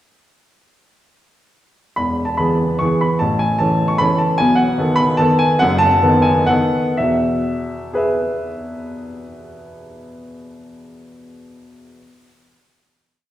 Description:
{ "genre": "classical, piano waltz", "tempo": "117-160 BPM", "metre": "3/4", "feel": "rubato", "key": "E major", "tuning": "A4 = 440 Hz", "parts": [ { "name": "bright upright piano", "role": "solo", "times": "2.0-12.0 s", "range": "E1 to C#6", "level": "-15 LUFS", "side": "equal", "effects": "none" } ], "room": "wet recital hall reverb, RT60 1.7 s", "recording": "heard from further back in the room", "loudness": "-14 LUFS", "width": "side -12 dB against mid", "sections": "2.0-7.0 A section; 7.0-9.8 final chord", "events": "slowing down 3.8-7.0", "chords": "2.0 E; 3.2 A; 4.4 B7; 7.0 E", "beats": "| 1.97 2.39 2.81 | 3.22 3.61 4.02 | 4.40 4.79 5.19 | 5.60 6.03 6.50 | 6.99 7.46 7.94 | 8.42 8.89 9.37" }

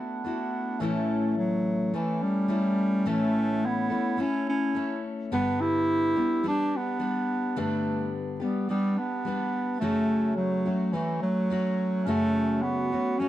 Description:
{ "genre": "acoustic folk duo or small band", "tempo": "106 BPM", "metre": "4/4", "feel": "straight", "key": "unclear", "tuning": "A4 = 442 Hz", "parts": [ { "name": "warm bass clarinet", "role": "melody", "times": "0.0-13.3 s", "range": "E3 to E4", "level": "-26 LUFS", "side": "right 1 dB", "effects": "none" }, { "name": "warm clarinet", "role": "second line", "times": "0.0-13.3 s", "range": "A3 to G4", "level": "-35 LUFS", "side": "right 3 dB", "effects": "none" }, { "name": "picked steel-string acoustic guitar", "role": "accompaniment", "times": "0.0-13.3 s", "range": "F#2 to A4", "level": "-31 LUFS", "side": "left 4 dB", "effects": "none" } ], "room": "light reverb", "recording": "dark, warm production", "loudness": "-24 LUFS", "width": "side -13 dB against mid", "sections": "0.8-13.3 A section", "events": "none", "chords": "0.0 Dadd9; 0.8 A; 5.3 G; 9.8 F#m", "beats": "0.23 | 0.80 1.36 1.93 2.50 | 3.06 3.62 4.19 4.75 | 5.32 5.88 6.45 7.01 | 7.57 8.14 8.70 9.27 | 9.83 10.39 10.96 11.52 | 12.09 12.65 13.21" }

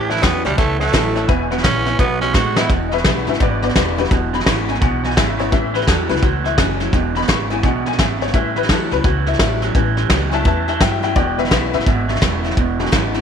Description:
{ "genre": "rockabilly", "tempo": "170 BPM", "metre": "4/4", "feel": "swing 63% on 8ths", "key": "E mixolydian", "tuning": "A4 = 439 Hz", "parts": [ { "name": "growling tenor saxophone", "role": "melody", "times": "0.0-2.7 s", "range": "G3 to G4", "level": "-21 LUFS", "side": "right 3 dB", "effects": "none" }, { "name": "picked steel-string acoustic guitar", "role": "accompaniment", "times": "0.0-13.2 s", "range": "E2 to F#4", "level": "-27 LUFS", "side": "left 12 dB", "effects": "none" }, { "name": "electric guitar through a small old amp", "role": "riff", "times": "0.0-13.2 s", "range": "E2 to G#3", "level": "-22 LUFS", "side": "right 14 dB", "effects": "none" }, { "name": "upright bass", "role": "bass", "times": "0.0-13.2 s", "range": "E1 to A2", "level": "-23 LUFS", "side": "equal", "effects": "none" }, { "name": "honky-tonk upright piano", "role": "accompaniment", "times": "0.1-13.2 s", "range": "F#3 to C#6", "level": "-23 LUFS", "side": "left 13 dB", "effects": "none" }, { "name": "soft brush drum kit", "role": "drums", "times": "0.1-13.2 s", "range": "hi-hat, kick drum, snare drum", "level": "-18 LUFS", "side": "equal", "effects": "none" } ], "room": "light reverb, small room ambience", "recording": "1960s-style stereo with parts hard left and right", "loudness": "-14 LUFS", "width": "side -7 dB against mid", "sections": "0.0-2.7 A section; 2.7-13.2 B section", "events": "drum fill 2.3-2.7; honky-tonk piano solo 2.7-13.2", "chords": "0.0 A7; 1.3 E7; 2.0 B7; 2.7 E7; 5.5 A7; 6.9 E7; 8.3 A7; 11.2 E7", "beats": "0.23 0.58 0.94 | 1.29 1.64 2.00 2.35 | 2.70 3.05 3.41 3.76 | 4.11 4.46 4.82 5.17 | 5.52 5.87 6.23 6.58 | 6.93 7.28 7.64 7.99 | 8.34 8.70 9.05 9.40 | 9.75 10.11 10.46 10.81 | 11.16 11.52 11.87 12.22 | 12.57 12.93" }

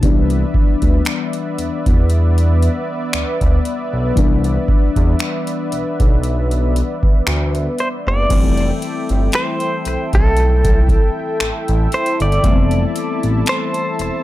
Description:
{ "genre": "contemporary R&B", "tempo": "58 BPM", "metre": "4/4", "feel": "swing 54% on 16ths", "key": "F lydian", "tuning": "A4 = 440 Hz", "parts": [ { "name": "mellow FM electric piano", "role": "accompaniment", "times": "0.0-14.2 s", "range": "Eb3 to D4", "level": "-24 LUFS", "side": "left 7 dB", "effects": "chorus" }, { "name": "warm analog pad", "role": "sustained chords", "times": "0.0-14.2 s", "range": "B3 to A5", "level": "-24 LUFS", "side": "right 1 dB", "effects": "chorus" }, { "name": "smooth synth bass", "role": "bass", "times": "0.0-14.1 s", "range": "E1 to E2", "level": "-16 LUFS", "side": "equal", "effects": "none" }, { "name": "booming analog drum machine", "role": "drums", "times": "0.0-14.2 s", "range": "crash cymbal, finger snaps, hi-hat, kick drum", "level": "-16 LUFS", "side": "equal", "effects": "none" }, { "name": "direct-recorded clean electric guitar", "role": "melody", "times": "7.8-14.2 s", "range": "A4 to D5", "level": "-21 LUFS", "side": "equal", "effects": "tremolo, ping-pong delay" } ], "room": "digital ambience", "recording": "dark, warm production", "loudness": "-14 LUFS", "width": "side -15 dB against mid", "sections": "0.0-8.3 A section; 8.3-14.2 B section", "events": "none", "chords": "0.0 Cmaj9 (rootless); 8.3 Fmaj9", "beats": "| 0.03 1.06 2.10 3.13 | 4.17 5.20 6.24 7.27 | 8.30 9.34 10.37 11.41 | 12.44 13.48" }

